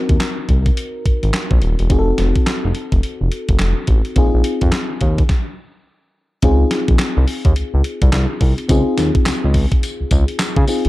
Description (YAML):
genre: R&B, new jack swing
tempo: 106 BPM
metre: 4/4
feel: swing 62% on 16ths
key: unclear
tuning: A4 = 440 Hz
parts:
  - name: mellow FM electric piano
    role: accompaniment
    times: 0.0-10.9 s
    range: C4 to Bb4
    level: -22 LUFS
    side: left 2 dB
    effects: chorus
  - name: smooth synth bass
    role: bass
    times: 0.1-10.9 s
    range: Eb1 to Db3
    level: -16 LUFS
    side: equal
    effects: none
  - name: crisp 8-bit digital drum machine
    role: drums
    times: 0.1-10.9 s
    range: handclaps, hi-hat, kick drum, snare drum, tambourine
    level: -17 LUFS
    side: equal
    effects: none
room: little or no reverb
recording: dark, warm production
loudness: -14 LUFS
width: side -18 dB against mid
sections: 0.0-6.4 A section; 6.4-10.9 B section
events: stop 5.3-6.4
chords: 0.0 Ab7 (rootless); 1.9 F7b9; 4.2 Bb9sus4; 5.3 N.C.; 6.4 Dbmaj7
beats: 0.20 0.77 1.34 | 1.90 2.47 3.04 3.60 | 4.17 4.73 5.30 5.87 | 6.43 7.00 7.56 8.13 | 8.70 9.26 9.83 10.39